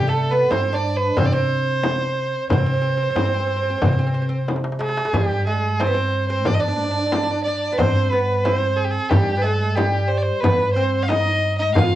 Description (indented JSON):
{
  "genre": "Arabic maqam ensemble",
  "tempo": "91 BPM",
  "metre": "4/4",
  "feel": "straight",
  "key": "G maqam hijaz from 5.1 s",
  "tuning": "A4 = 445 Hz",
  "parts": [
    { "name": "clear violin", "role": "melody", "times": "0.0-12.0 s", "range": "G4 to F5", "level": "-22 LUFS", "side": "right 1 dB", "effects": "cassette tape" },
    { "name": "oud", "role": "second line", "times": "0.0-12.0 s", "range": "G3 to F4", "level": "-25 LUFS", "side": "right 3 dB", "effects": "cassette tape" },
    { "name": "upright bass", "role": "bass", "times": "0.0-12.0 s", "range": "G2 to C3", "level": "-23 LUFS", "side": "equal", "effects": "none" },
    { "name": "darbuka", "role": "percussion", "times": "0.2-11.9 s", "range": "none", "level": "-25 LUFS", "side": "equal", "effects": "none" },
    { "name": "frame drum", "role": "percussion", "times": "0.5-11.9 s", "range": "none", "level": "-24 LUFS", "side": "left 3 dB", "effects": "none" }
  ],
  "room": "light reverb, studio ambience",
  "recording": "home recording on cassette",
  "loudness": "-18 LUFS",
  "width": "side -13 dB against mid",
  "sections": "0.0-5.1 A section; 5.1-12.0 B section",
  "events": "drum fill 4.5-5.1",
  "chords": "none"
}